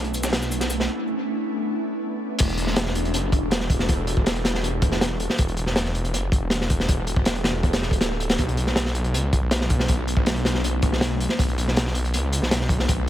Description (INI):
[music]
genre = drum and bass, jungle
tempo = 160 BPM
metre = 4/4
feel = straight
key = E minor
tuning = A4 = 439 Hz
[part]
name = ethereal airy pad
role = sustained chords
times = 0.0-13.1 s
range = A3 to A4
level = -30 LUFS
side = equal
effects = ensemble chorus, built-in reverb, phaser
[part]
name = detuned saw bass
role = bass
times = 0.0-13.1 s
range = D1 to C#2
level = -25 LUFS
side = equal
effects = none
[part]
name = crunchy breakbeat drum kit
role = drums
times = 0.0-13.0 s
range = crash cymbal, hi-hat, kick drum, snare drum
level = -22 LUFS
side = equal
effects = high-pass filter on kick, high-pass filter on hats, high-pass filter on cymbals, high-pass filter on snare, high-pass filter on room, analog delay
[part]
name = breakbeat sampler-style drum kit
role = drums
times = 0.1-0.8 s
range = hi-hat, shaker, snare drum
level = -31 LUFS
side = equal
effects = high-pass filter on perc, high-pass filter on snare, high-pass filter on hats, analog delay
[sound]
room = light reverb, small room ambience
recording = echo-heavy mix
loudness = -20 LUFS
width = side -12 dB against mid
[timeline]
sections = 0.0-2.4 A section; 2.4-13.1 B section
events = break 0.9-2.4; drop 2.4-13.1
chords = 0.0 Bm11; 2.4 Em11; 8.4 Bm11